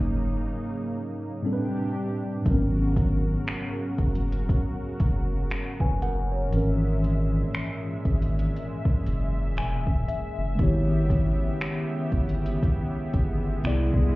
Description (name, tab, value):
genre	contemporary R&B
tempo	59 BPM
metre	4/4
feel	swing 58% on 16ths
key	G# minor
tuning	A4 = 439 Hz
part	mellow tine electric piano	accompaniment	0.0-14.2 s	G#2 to G#5	-28 LUFS	equal	medium stereo tremolo
part	lush unison pad	sustained chords	0.0-14.2 s	A#2 to E5	-34 LUFS	right 1 dB	chorus
part	saturated sub bass	bass	0.0-14.2 s	E1 to C2	-26 LUFS	equal	none
part	smooth R&B drum kit	drums	2.5-14.1 s	finger snaps, hi-hat, kick drum	-26 LUFS	equal	none
part	swell	sound effects	12.9-14.2 s	none	-38 LUFS	equal	none
room	digital ambience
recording	heard muffled through a wall, club reverb, EQ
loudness	-24 LUFS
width	side -20 dB against mid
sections	0.0-14.2 A section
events	break 0.4-2.5; tine electric piano fill 9.1-10.6; swell 12.9-14.2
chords	0.0 F#69; 1.4 Am11; 2.5 G#m11; 6.5 F#9/G#; 10.6 D#7b9b13/G#; 13.6 Cmaj9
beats	0.42 1.44 | 2.46 3.47 4.49 5.51 | 6.53 7.54 8.56 9.58 | 10.59 11.61 12.63 13.64